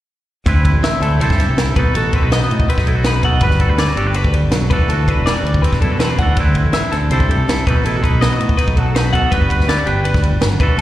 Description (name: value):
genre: math rock and midwest emo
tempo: 163 BPM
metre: 4/4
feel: straight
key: unclear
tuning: A4 = 440 Hz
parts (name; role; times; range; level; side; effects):
- twangy electric guitar; accompaniment; 0.5-10.8 s; B2 to B4; -20 LUFS; right 3 dB; slapback echo
- fingered electric bass; bass; 0.5-10.8 s; E1 to A2; -16 LUFS; equal; none
- compact cocktail drum kit; drums; 0.5-10.8 s; kick drum, ride cymbal, snare drum; -18 LUFS; equal; none
- twelve-string electric guitar; arpeggios; 0.8-10.8 s; G4 to F#5; -22 LUFS; left 5 dB; slapback echo
room: little or no reverb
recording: live gig heard through the venue's PA, recital hall reverb, lossy compression artefacts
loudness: -13 LUFS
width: side -14 dB against mid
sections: 0.5-10.8 A section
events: none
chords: 0.5 Dsus2; 1.2 C6; 1.8 B7; 3.4 Gmaj7; 4.7 Em11; 6.4 Dsus2; 7.1 C6; 7.7 B7; 9.3 Gmaj7